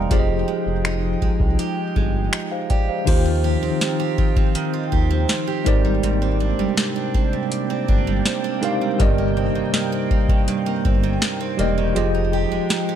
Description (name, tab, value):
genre	contemporary R&B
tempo	81 BPM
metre	4/4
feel	straight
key	Eb major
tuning	A4 = 441 Hz
part	tine electric piano	accompaniment	0.0-13.0 s	Eb3 to C6	-24 LUFS	left 1 dB	medium stereo tremolo
part	chorused pulse-width pad	sustained chords	0.0-13.0 s	C3 to G5	-29 LUFS	equal	none
part	picked steel-string acoustic guitar	arpeggios	0.0-13.0 s	G2 to Bb4	-26 LUFS	right 10 dB	ping-pong delay
part	smooth synth bass	bass	0.0-12.6 s	Fb1 to Eb2	-23 LUFS	equal	none
part	booming analog drum machine	drums	0.1-12.9 s	crash cymbal, finger snaps, hi-hat, kick drum, snare drum	-20 LUFS	equal	none
room	little or no reverb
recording	none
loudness	-18 LUFS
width	side -9 dB against mid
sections	0.0-3.1 A section; 3.1-13.0 B section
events	kick muted 12.0-13.0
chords	0.1 Fm9; 3.1 Eb69; 5.7 Abmaj9#11; 9.0 Cm7/G; 12.0 Fm9